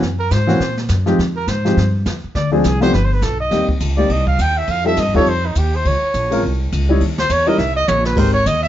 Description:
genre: jazz, small-group swing and bop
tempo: 206 BPM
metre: 4/4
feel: swing 59% on 8ths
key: F minor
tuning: A4 = 440 Hz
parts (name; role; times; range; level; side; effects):
- upright bass; bass; 0.0-8.7 s; G1 to Bb2; -18 LUFS; equal; none
- jazz brush drum kit; drums; 0.0-8.7 s; brushed snare drum, crash cymbal, hi-hat, kick drum, ride cymbal, snare drum, toms; -24 LUFS; equal; none
- clear trumpet; second line; 0.2-8.7 s; Eb4 to G5; -19 LUFS; right 1 dB; none
- warm baby grand piano; accompaniment; 0.5-8.3 s; Fb3 to Db5; -18 LUFS; left 1 dB; none
room: light reverb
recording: nothing above 7.6 kHz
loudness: -14 LUFS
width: side -12 dB against mid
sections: 0.0-3.5 A section; 3.5-8.7 A section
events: trumpet solo 0.0-8.7; drum fill 7.6-8.2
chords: 0.0 Gb(#11); 1.2 Fmadd9; 2.4 Dm7b5; 2.9 G; 3.5 Cm7; 4.7 F7; 5.8 Bbmadd9; 7.0 Eb7(no3); 8.2 Abmaj9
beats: | 0.02 0.32 0.61 0.90 | 1.19 1.48 1.77 2.06 | 2.35 2.65 2.94 3.23 | 3.52 3.81 4.10 4.39 | 4.68 4.97 5.27 5.56 | 5.85 6.14 6.43 6.72 | 7.01 7.30 7.59 7.88 | 8.18 8.47

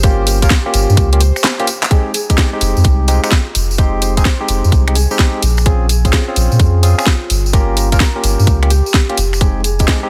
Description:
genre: UK garage, two-step garage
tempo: 128 BPM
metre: 4/4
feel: swing 66% on 16ths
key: F minor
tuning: A4 = 442 Hz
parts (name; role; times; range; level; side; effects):
- concert harp; melody; 0.0-10.1 s; F4 to C5; -28 LUFS; equal; dub echo
- warm symphonic violin section; sustained chords; 0.0-1.9 s; C5; -40 LUFS; equal; none
- barky tine electric piano; stabs; 0.0-10.1 s; Ab3 to Bb4; -23 LUFS; equal; none
- soft dub sub bass; bass; 0.0-9.9 s; F1 to Bb2; -15 LUFS; equal; sidechain pumping
- electronic kick drum; drums; 0.0-10.0 s; none; -15 LUFS; equal; overdrive
- garage drum kit; drums; 0.0-10.0 s; finger snaps, handclaps, hi-hat, snare drum; -20 LUFS; equal; overdrive
- tambourine; percussion; 0.0-10.0 s; none; -27 LUFS; equal; none
room: little or no reverb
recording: dense, heavily limited modern master, vinyl crackle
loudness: -13 LUFS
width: mono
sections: 0.0-1.9 A section; 1.9-10.1 B section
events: drop 0.0-1.9; break 1.4-1.9; drum fill 1.4-1.9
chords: 0.0 Gm7b5; 1.9 Fm7; 5.4 Bbm7; 7.5 Gm7b5; 9.4 Fm7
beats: | 0.04 0.50 0.97 1.44 | 1.91 2.38 2.85 3.32 | 3.79 4.25 4.72 5.19 | 5.66 6.13 6.60 7.07 | 7.54 8.00 8.47 8.94 | 9.41 9.88

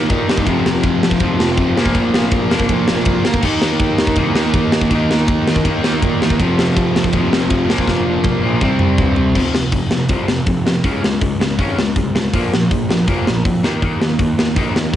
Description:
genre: punk rock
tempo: 162 BPM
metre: 4/4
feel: straight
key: F minor from 9.4 s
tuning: A4 = 441 Hz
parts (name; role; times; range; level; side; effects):
- distorted electric guitar; riff; 0.0-15.0 s; F2 to Eb4; -22 LUFS; right 7 dB; distortion
- overdriven semi-hollow guitar; riff; 0.0-15.0 s; F2 to Eb4; -21 LUFS; left 7 dB; none
- thick fuzz guitar; riff; 0.0-9.4 s; F2 to Eb4; -18 LUFS; right 1 dB; distortion
- fuzz picked electric bass; bass; 0.0-15.0 s; F1 to Bb2; -23 LUFS; equal; overdrive
- tight metal drum kit; drums; 0.1-15.0 s; crash cymbal, hi-hat, kick drum, ride cymbal, snare drum, toms; -18 LUFS; equal; cassette tape
room: light reverb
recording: home recording on cassette, nothing above 11.0 kHz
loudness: -13 LUFS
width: side -11 dB against mid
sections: 0.0-9.4 A section; 9.4-15.0 B section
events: drum fill 7.9-9.4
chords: 0.5 F5; 1.8 Bb5/F; 3.4 Eb5; 6.4 F5; 7.7 Bb5/F; 8.6 C5; 9.4 F5; 10.8 Db5; 12.3 Bb5; 13.6 Eb5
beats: 0.10 | 0.47 0.84 1.21 1.58 | 1.95 2.32 2.69 3.06 | 3.43 3.80 4.17 4.54 | 4.91 5.28 5.65 6.02 | 6.39 6.76 7.14 7.51 | 7.88 8.25 8.62 8.99 | 9.36 9.73 10.10 10.47 | 10.85 11.22 11.59 11.96 | 12.33 12.71 13.08 13.45 | 13.82 14.20 14.57 14.94

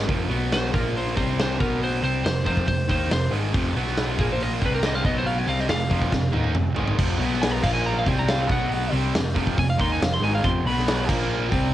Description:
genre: hard rock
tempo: 139 BPM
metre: 4/4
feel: straight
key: unclear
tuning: A4 = 439 Hz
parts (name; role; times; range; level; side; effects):
- distorted electric guitar; riff; 0.0-0.1, 7.0-11.7 s; F2 to Eb4; -33 LUFS; left 1 dB; none
- high-gain distorted guitar; riff; 0.0-11.7 s; F2 to Eb4; -28 LUFS; right 6 dB; distortion, cassette tape
- overdriven semi-hollow guitar; riff; 0.0-11.7 s; F2 to Eb4; -29 LUFS; left 7 dB; cassette tape
- hollow-body short-scale picked electric bass; bass; 0.0-11.7 s; F1 to Eb2; -27 LUFS; equal; none
- huge arena drum kit; drums; 0.1-11.6 s; crash cymbal, hi-hat, kick drum, snare drum, toms; -26 LUFS; equal; cassette tape
- lightly driven lead guitar; melody; 0.5-11.1 s; Ab4 to C6; -28 LUFS; equal; cassette tape
room: light reverb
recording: home recording on cassette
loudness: -20 LUFS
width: side -13 dB against mid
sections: 0.1-11.7 A section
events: lead electric guitar solo 0.1-11.7; drum fill 6.1-7.0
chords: 0.1 F5; 0.3 B5; 0.7 Bb5; 1.2 C5; 1.6 B5; 2.0 F5; 3.8 B5; 4.2 Bb5; 4.6 C5; 5.1 B5; 5.5 F5; 7.2 B5; 7.6 Bb5; 8.1 C5; 8.5 B5; 8.9 F5; 10.7 B5; 11.1 Bb5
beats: | 0.08 0.51 0.94 1.38 | 1.81 2.24 2.67 3.11 | 3.54 3.97 4.40 4.83 | 5.27 5.70 6.13 6.56 | 6.99 7.42 7.86 8.29 | 8.72 9.15 9.58 10.01 | 10.44 10.87 11.30 11.73

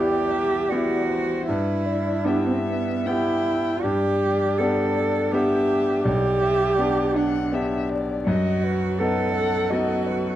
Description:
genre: classical, slow romantic movement for piano trio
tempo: 70-84 BPM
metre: 3/4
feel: rubato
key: E minor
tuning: A4 = 442 Hz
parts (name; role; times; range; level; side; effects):
- dark violin; melody; 0.0-10.4 s; B4 to G5; -30 LUFS; left 6 dB; none
- dark cello; second line; 0.0-10.4 s; B3 to A4; -23 LUFS; right 3 dB; none
- bright grand piano; accompaniment; 0.0-10.4 s; B1 to A4; -24 LUFS; left 1 dB; none
room: moderate recital hall reverb, RT60 1.6 s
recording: close, detailed microphones, vinyl crackle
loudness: -20 LUFS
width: side -12 dB against mid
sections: 0.0-10.4 A section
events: none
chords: 0.0 Em; 1.5 Em/G; 3.8 G; 6.0 G/B; 8.3 B7/F#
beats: 0.70 | 1.47 2.24 3.06 | 3.83 4.58 5.32 | 6.05 6.79 7.53 | 8.27 8.99 9.71

